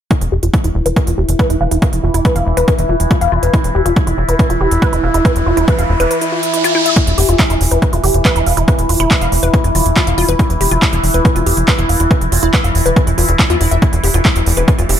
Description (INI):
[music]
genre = psychedelic trance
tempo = 140 BPM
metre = 4/4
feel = straight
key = E phrygian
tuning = A4 = 438 Hz
[part]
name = overtone-sweeping drone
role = sustained chords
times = 0.7-15.0 s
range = E3 to E4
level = -19 LUFS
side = equal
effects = chorus, built-in reverb, sidechain pumping
[part]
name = woody wave-folded pluck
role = riff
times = 0.1-14.9 s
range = E4 to F5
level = -18 LUFS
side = moving between left 8 dB and right 8 dB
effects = chorus, auto-pan, sidechain pumping, dub echo
[part]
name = big-room dance drum kit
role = drums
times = 0.1-15.0 s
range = handclaps, hi-hat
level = -20 LUFS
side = right 2 dB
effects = overdrive
[part]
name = electronic kick drum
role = drums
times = 0.1-14.8 s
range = none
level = -14 LUFS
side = equal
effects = overdrive
[part]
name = plucky analog bass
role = bass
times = 0.2-15.0 s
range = E1 to E2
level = -15 LUFS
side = equal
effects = none
[part]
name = riser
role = sound effects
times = 5.0-7.0 s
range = none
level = -21 LUFS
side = right 2 dB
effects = none
[sound]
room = digital ambience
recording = none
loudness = -11 LUFS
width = side -9 dB against mid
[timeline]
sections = 0.1-7.0 A section; 7.0-15.0 B section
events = filter sweep on synth arpeggio sound 0.1-7.0; riser 5.0-7.0; kick drops out 6.1-7.0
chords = 0.1 E5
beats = | 0.11 0.54 0.96 1.39 | 1.82 2.25 2.68 3.11 | 3.54 3.96 4.39 4.82 | 5.25 5.68 6.11 6.54 | 6.96 7.39 7.82 8.25 | 8.68 9.11 9.54 9.96 | 10.39 10.82 11.25 11.68 | 12.11 12.54 12.96 13.39 | 13.82 14.25 14.68